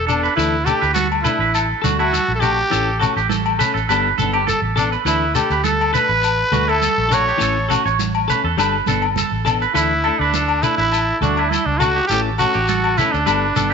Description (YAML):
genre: highlife guitar band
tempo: 102 BPM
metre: 4/4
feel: straight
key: unclear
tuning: A4 = 440 Hz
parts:
  - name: growling trumpet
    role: melody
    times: 0.0-13.7 s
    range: D4 to C#5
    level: -20 LUFS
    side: equal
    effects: none
  - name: clean electric guitar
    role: arpeggios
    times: 0.0-13.7 s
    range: E4 to C#5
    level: -21 LUFS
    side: right 9 dB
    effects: tape echo
  - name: vintage muted fingered electric bass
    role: bass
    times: 0.0-13.7 s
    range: E1 to E2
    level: -23 LUFS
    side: equal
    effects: none
  - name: semi-hollow electric guitar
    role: accompaniment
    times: 0.1-13.7 s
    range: E3 to A4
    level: -25 LUFS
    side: left 10 dB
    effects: none
  - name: agogo bells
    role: percussion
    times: 0.1-13.4 s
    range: none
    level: -25 LUFS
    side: left 13 dB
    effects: none
  - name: shekere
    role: percussion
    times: 0.1-13.7 s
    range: none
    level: -26 LUFS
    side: left 6 dB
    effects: none
  - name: congas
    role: percussion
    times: 0.4-13.7 s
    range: none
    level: -28 LUFS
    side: right 12 dB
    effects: none
room: moderate echo chamber reverb, RT60 1.9 s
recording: 1960s-style stereo with parts hard left and right, nothing above 7.7 kHz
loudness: -15 LUFS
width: side -6 dB against mid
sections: 0.0-13.7 A section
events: none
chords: 0.4 Dsus2; 2.7 A; 3.9 Gadd9; 5.1 Dsus2; 7.4 A; 8.6 Gadd9; 9.7 A